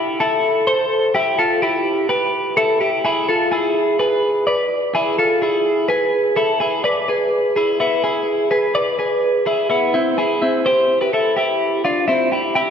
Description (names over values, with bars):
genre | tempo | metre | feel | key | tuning
indie pop | 126 BPM | 4/4 | straight | unclear | A4 = 440 Hz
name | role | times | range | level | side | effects
twelve-string electric guitar | solo | 0.0-12.7 s | B3 to D5 | -15 LUFS | equal | none
room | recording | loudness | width
wet church reverb, RT60 2.9 s | recorded in a church or concert hall | -15 LUFS | side -7 dB against mid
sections
0.0-6.8 A section; 6.8-10.7 B section; 10.7-12.7 C section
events
none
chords
0.0 Am7; 3.0 E; 6.8 E7; 10.7 C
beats
0.20 0.68 | 1.15 1.62 2.10 2.57 | 3.05 3.52 4.00 4.47 | 4.95 5.42 5.90 6.37 | 6.85 7.32 7.80 8.27 | 8.75 9.22 9.70 10.18 | 10.65 11.13 11.61 12.08 | 12.56